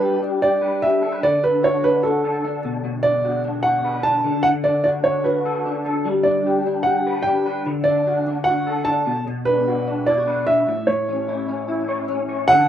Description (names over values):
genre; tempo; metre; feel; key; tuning
indie pop; 149 BPM; 4/4; straight; D major; A4 = 437 Hz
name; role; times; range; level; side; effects
dark upright piano; melody; 0.0-12.7 s; A4 to A5; -19 LUFS; right 2 dB; none
electric guitar through a small old amp; arpeggios; 0.0-12.7 s; A2 to C#5; -22 LUFS; left 2 dB; ensemble chorus
room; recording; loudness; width
light reverb; rough home demo mix; -18 LUFS; side -10 dB against mid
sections
0.0-12.5 A section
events
none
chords
0.0 G; 1.2 D; 2.6 Bm; 4.2 D; 6.1 G; 7.7 D; 9.1 Bm; 10.7 A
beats
0.02 0.42 0.82 | 1.23 1.63 2.03 2.44 | 2.84 3.24 3.64 4.05 | 4.45 4.85 5.25 5.66 | 6.06 6.46 6.86 7.26 | 7.67 8.07 8.47 8.87 | 9.27 9.68 10.08 10.48 | 10.88 11.28 11.68 12.08 | 12.48